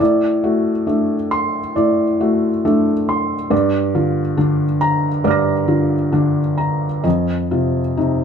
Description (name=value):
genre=neoclassical minimalist piano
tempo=68 BPM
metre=4/4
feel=rubato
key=unclear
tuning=A4 = 441 Hz
part: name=felt-muted upright piano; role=solo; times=0.0-8.2 s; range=F2 to Bb6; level=-15 LUFS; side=equal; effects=none
room=moderate studio reverb, RT60 0.5 s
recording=band playing live in one room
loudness=-15 LUFS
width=side -7 dB against mid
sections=0.0-8.2 A section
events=none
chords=0.0 D7/A; 3.5 Gm7; 7.0 F7(no3)